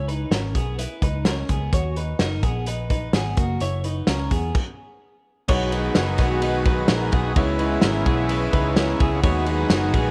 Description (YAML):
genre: jangly indie pop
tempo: 128 BPM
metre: 4/4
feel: straight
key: B major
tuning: A4 = 440 Hz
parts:
  - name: twelve-string electric guitar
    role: arpeggios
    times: 0.0-10.1 s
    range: A#3 to C#5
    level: -31 LUFS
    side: equal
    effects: none
  - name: vintage muted picked electric bass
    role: bass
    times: 0.0-10.1 s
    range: F#1 to E2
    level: -28 LUFS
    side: equal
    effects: none
  - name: loose indie drum kit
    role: drums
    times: 0.1-10.1 s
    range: crash cymbal, hi-hat, kick drum, ride cymbal, snare drum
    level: -25 LUFS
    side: equal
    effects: none
  - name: overdriven combo organ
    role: accompaniment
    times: 5.5-10.1 s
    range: C#4 to B4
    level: -28 LUFS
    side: equal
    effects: none
  - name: lush unison pad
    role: sustained chords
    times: 5.5-10.1 s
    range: C#3 to F#4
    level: -30 LUFS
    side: equal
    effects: chorus
room: moderate echo chamber reverb, RT60 1.7 s, small room reverb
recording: none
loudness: -22 LUFS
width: mono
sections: 0.0-5.5 A section; 5.5-10.1 B section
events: stop 4.5-5.5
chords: 0.0 C#m7; 1.7 B6; 3.4 F#7; 5.5 B6; 7.4 C#m7; 9.2 B6